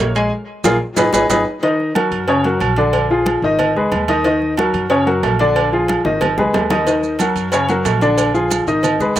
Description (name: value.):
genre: latin, salsa.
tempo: 183 BPM.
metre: 4/4.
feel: straight.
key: Eb minor.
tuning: A4 = 442 Hz.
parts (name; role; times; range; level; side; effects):
warm baby grand piano; accompaniment; 0.0-9.2 s; Db3 to Ab5; -16 LUFS; left 1 dB; slapback echo.
upright bass; bass; 0.0-9.2 s; Ab1 to Gb2; -24 LUFS; equal; none.
congas; percussion; 0.0-9.2 s; none; -26 LUFS; equal; none.
bongos and cowbell; percussion; 0.1-9.2 s; none; -24 LUFS; left 2 dB; none.
maracas; percussion; 0.2-1.4, 6.9-9.2 s; none; -27 LUFS; right 10 dB; none.
timbales and agogo bells; percussion; 0.2-9.2 s; none; -22 LUFS; right 8 dB; none.
room: little or no reverb.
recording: recorded outdoors, with no room sound.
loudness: -14 LUFS.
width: side -12 dB against mid.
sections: 0.0-1.6 A section; 1.6-9.2 A section.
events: band accent 0.3-1.6; drum fill 0.6-1.6, 6.0-6.9.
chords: 0.3 Bb5; 1.0 Abm; 1.6 Ebm; 2.3 Gb; 2.9 Bb7; 3.6 Abm; 4.2 Ebm; 4.9 Gb; 5.6 Bb7; 6.2 Abm; 6.9 Ebm; 7.5 Gb; 8.2 Bb7.